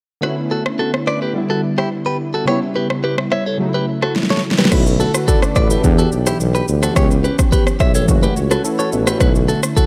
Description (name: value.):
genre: afrobeats.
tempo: 107 BPM.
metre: 4/4.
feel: straight.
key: B minor.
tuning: A4 = 440 Hz.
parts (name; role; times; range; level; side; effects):
warm analog keys; accompaniment; 0.2-9.9 s; C#3 to D5; -22 LUFS; equal; chorus.
direct-recorded clean electric guitar; riff; 0.2-9.9 s; E4 to E5; -24 LUFS; equal; none.
deep house drum kit; drums; 0.2-9.9 s; crash cymbal, kick drum, rim click, shaker, snare drum; -19 LUFS; equal; overdrive.
warm tuba; bass; 4.7-9.5 s; F#1 to E2; -20 LUFS; equal; none.
room: light reverb.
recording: none.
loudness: -17 LUFS.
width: mono.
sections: 0.2-4.7 A section; 4.7-9.9 B section.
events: drum fill 4.2-4.7.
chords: 0.2 Bm11; 1.4 Em7; 2.5 C#m7b5; 3.6 F#m7; 4.7 Bm11; 5.8 Em7; 7.0 C#m7b5; 8.1 F#m7; 9.2 Bm11.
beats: | 0.23 0.79 1.35 1.92 | 2.48 3.04 3.60 4.16 | 4.72 5.28 5.84 6.40 | 6.96 7.52 8.08 8.64 | 9.20 9.77.